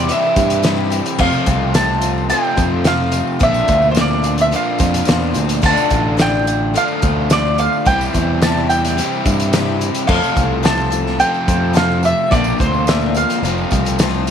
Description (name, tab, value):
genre	folk rock and heartland rock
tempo	108 BPM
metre	4/4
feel	straight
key	F major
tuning	A4 = 443 Hz
part	mandolin	melody	0.0-14.2 s	C5 to A5	-18 LUFS	right 2 dB	none
part	picked twelve-string acoustic guitar	accompaniment	0.0-14.3 s	F2 to A4	-23 LUFS	left 11 dB	none
part	crunchy overdriven guitar	riff	0.0-14.3 s	F2 to F4	-21 LUFS	equal	none
part	picked electric bass	bass	0.0-14.3 s	F1 to G2	-20 LUFS	equal	none
part	loose indie drum kit	drums	0.1-14.3 s	crash cymbal, hi-hat, kick drum, snare drum	-20 LUFS	equal	none
part	tambourine	percussion	0.1-14.3 s	none	-36 LUFS	right 16 dB	none
room	light reverb, small room ambience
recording	1960s-style stereo with parts hard left and right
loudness	-13 LUFS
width	side -8 dB against mid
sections	0.0-14.3 A section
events	none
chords	0.0 C; 1.2 F; 3.4 Bbadd9; 5.6 Dm; 7.9 C; 10.1 F; 12.3 Bbadd9; 13.4 F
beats	0.09 0.64 | 1.20 1.75 2.30 2.86 | 3.42 3.97 4.53 5.08 | 5.64 6.19 6.75 7.30 | 7.86 8.42 8.97 9.53 | 10.09 10.65 11.20 11.76 | 12.32 12.88 13.44 13.99